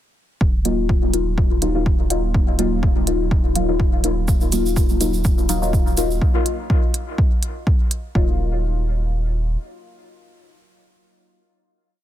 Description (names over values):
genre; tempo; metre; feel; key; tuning
dub techno; 124 BPM; 4/4; swing 54% on 16ths; Eb minor; A4 = 442 Hz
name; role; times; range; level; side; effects
warm sub bass; bass; 0.4-9.6 s; Eb1; -23 LUFS; equal; sidechain pumping
electronic kick drum; drums; 0.4-8.3 s; none; -18 LUFS; equal; none
deep mellow chord stab; stabs; 0.7-11.4 s; Gb3 to F4; -23 LUFS; left 2 dB; chorus, phaser, dub echo
electronic hi-hat; drums; 0.7-8.0 s; none; -24 LUFS; right 3 dB; none
egg shaker; percussion; 4.3-6.2 s; none; -30 LUFS; right 6 dB; none
room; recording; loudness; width
digital ambience; dense, heavily limited modern master; -17 LUFS; side -12 dB against mid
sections
0.4-8.2 groove; 8.2-12.0 final chord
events
none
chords
0.4 Ebmadd9